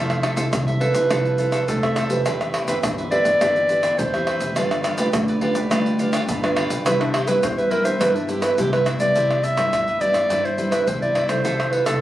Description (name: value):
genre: samba and choro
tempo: 104 BPM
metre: 4/4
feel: straight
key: C major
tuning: A4 = 441 Hz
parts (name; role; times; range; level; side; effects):
- cavaquinho; accompaniment; 0.0-12.0 s; E4 to E5; -28 LUFS; right 1 dB; none
- nylon-string guitar; accompaniment; 0.0-12.0 s; G2 to B4; -27 LUFS; equal; none
- upright bass; bass; 0.0-12.0 s; E1 to G2; -26 LUFS; equal; none
- tube shaker, pandeiro, tamborim and surdo; percussion; 0.1-12.0 s; none; -26 LUFS; equal; none
- warm clarinet; melody; 0.8-12.0 s; D4 to E5; -20 LUFS; right 1 dB; none
room: moderate studio reverb, RT60 0.6 s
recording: recorded on a phone in the room, club reverb, compression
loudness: -18 LUFS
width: side -14 dB against mid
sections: 0.0-9.2 A section; 9.2-12.0 B section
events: clarinet solo 0.0-9.2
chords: 0.0 Fmaj7; 2.3 Cmaj7/E; 4.6 G7; 6.9 Cmaj7; 11.5 Fmaj7#11/C